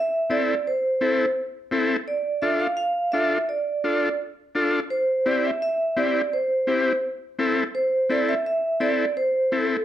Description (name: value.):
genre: latin.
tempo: 169 BPM.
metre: 4/4.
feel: straight.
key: A minor.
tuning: A4 = 440 Hz.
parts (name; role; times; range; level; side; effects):
vibraphone with medium mallets; melody; 0.0-9.8 s; A4 to F5; -22 LUFS; right 2 dB; none.
overdriven combo organ; accompaniment; 0.3-9.8 s; C4 to A4; -24 LUFS; left 2 dB; none.
room: light reverb.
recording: dark, warm production.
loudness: -21 LUFS.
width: side -11 dB against mid.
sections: 0.0-9.8 A section.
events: none.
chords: 0.0 Am; 2.1 Dm; 4.9 C; 7.7 Am.